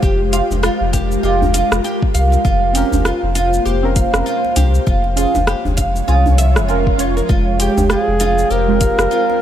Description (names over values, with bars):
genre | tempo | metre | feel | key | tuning
organic downtempo | 99 BPM | 4/4 | swing 59% on 16ths | F minor | A4 = 441 Hz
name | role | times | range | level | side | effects
ethereal airy pad | sustained chords | 0.0-9.4 s | F3 to G5 | -23 LUFS | left 3 dB | ensemble chorus, built-in reverb, tremolo, sidechain pumping
oud | arpeggios | 0.0-9.4 s | C4 to F5 | -19 LUFS | right 2 dB | tape echo
warm sub bass | bass | 0.0-9.1 s | F1 to C2 | -17 LUFS | left 1 dB | none
deep house drum kit | drums | 0.0-9.3 s | cabasa, hi-hat, rim click | -23 LUFS | equal | none
electronic kick drum | drums | 0.0-9.0 s | none | -17 LUFS | equal | none
deep mellow chord stab | accompaniment | 0.3-9.2 s | Ab3 to G5 | -23 LUFS | right 4 dB | chorus, sidechain pumping, tape echo
djembe | percussion | 0.5-9.4 s | none | -24 LUFS | right 1 dB | none
swell | sound effects | 6.3-7.3 s | none | -28 LUFS | equal | none
bronze singing bowl | texture | 7.3-9.4 s | Ab3 | -27 LUFS | right 9 dB | none
mellow duduk | melody | 7.9-9.4 s | Ab4 to Bb4 | -18 LUFS | left 1 dB | none
room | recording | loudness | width
light reverb, small room ambience | none | -13 LUFS | side -10 dB against mid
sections
0.0-9.4 A section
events
swell 6.3-7.3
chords
0.0 Fmadd9; 2.4 Bbmadd9/F; 4.9 Db/F; 7.3 Fmadd9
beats
| 0.02 0.63 1.24 1.84 | 2.45 3.05 3.66 4.27 | 4.87 5.48 6.08 6.69 | 7.30 7.90 8.51 9.11